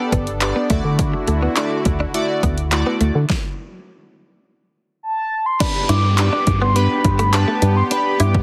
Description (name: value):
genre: dance-pop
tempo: 104 BPM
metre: 4/4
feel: straight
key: G major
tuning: A4 = 440 Hz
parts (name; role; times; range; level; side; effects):
- chorused retro synth keys; accompaniment; 0.0-8.4 s; A3 to D5; -27 LUFS; equal; phaser, sidechain pumping
- soft supersaw; sustained chords; 0.0-8.4 s; D3 to A4; -29 LUFS; equal; sidechain pumping
- direct-recorded clean electric guitar; riff; 0.1-8.4 s; G3 to E4; -27 LUFS; equal; analog chorus
- organ-like FM bass; bass; 0.1-8.4 s; G1 to D3; -20 LUFS; equal; sidechain pumping
- deep house drum kit; drums; 0.1-8.4 s; crash cymbal, handclaps, hi-hat, kick drum, snare drum; -24 LUFS; equal; overdrive
- mellow horn-like synth lead; melody; 5.0-8.3 s; A5 to D6; -23 LUFS; equal; chorus, digital delay
- downlifter; sound effects; 5.6-8.4 s; none; -32 LUFS; equal; none
room: digital ambience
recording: heavily compressed radio sound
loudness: -18 LUFS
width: mono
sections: 0.0-5.6 A section; 5.6-8.4 B section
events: stop 3.3-5.6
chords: 0.0 G; 0.7 Dadd9; 3.3 N.C.; 5.6 G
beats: 0.41 | 0.99 1.57 2.14 2.72 | 3.30 3.87 4.45 5.03 | 5.60 6.18 6.76 7.33 | 7.91